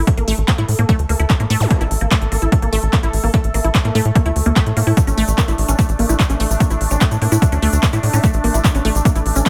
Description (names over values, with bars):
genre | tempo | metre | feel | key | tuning
psychedelic trance | 147 BPM | 4/4 | straight | unclear | A4 = 440 Hz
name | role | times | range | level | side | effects
bubbling stepped-filter texture | sustained chords | 0.0-9.5 s | A3 to A4 | -28 LUFS | equal | chorus, built-in reverb, sidechain pumping
tight sequencer bass | bass | 0.0-9.4 s | A1 to A2 | -19 LUFS | equal | tube saturation
big-room dance drum kit | drums | 0.1-9.5 s | handclaps, hi-hat | -27 LUFS | equal | overdrive
electronic kick drum | drums | 0.1-9.5 s | none | -17 LUFS | equal | overdrive
unison pluck | riff | 0.2-9.5 s | A3 to E4 | -25 LUFS | equal | sidechain pumping, tape echo
zap | sound effects | 1.6-1.7 s | none | -30 LUFS | equal | none
egg shaker | percussion | 5.0-9.5 s | none | -31 LUFS | equal | none
room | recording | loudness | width
little or no reverb | none | -16 LUFS | mono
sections
0.0-9.5 A section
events
none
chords
0.0 A5